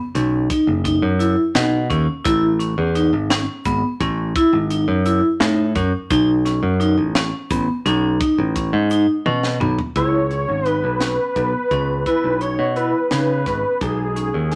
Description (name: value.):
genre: progressive instrumental, band music in an uneven meter.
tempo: 171 BPM (eighths).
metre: 11/8.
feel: straight.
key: C# minor.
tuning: A4 = 440 Hz.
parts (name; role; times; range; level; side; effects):
vibraphone with hard mallets; arpeggios; 0.1-14.6 s; B3 to E4; -23 LUFS; equal; none.
modern bright picked electric bass; bass; 0.1-14.6 s; F#1 to C#3; -22 LUFS; equal; none.
tight funk drum kit; drums; 0.2-14.6 s; hi-hat, kick drum, snare drum, toms; -26 LUFS; equal; none.
tube shaker; percussion; 1.2-9.2 s; none; -50 LUFS; equal; none.
unison lead; melody; 10.0-14.6 s; G#4 to C#5; -23 LUFS; equal; none.
room: moderate studio reverb, RT60 0.8 s.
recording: none.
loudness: -19 LUFS.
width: mono.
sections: 0.0-10.0 A section; 10.0-14.6 B section.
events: drum fill 9.3-10.0.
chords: 0.0 C#9sus4/F#; 2.3 Amaj7; 6.1 B7; 10.0 C#m7; 13.8 G#m.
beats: 0.15 0.50 0.85 1.20 1.55 1.90 | 2.25 2.60 2.95 3.30 3.65 4.00 4.35 4.70 5.05 5.41 5.76 | 6.11 6.46 6.81 7.16 7.51 7.86 8.21 8.56 8.91 9.26 9.61 | 9.96 10.31 10.66 11.01 11.36 11.71 12.06 12.41 12.76 13.11 13.46 | 13.81 14.16 14.52.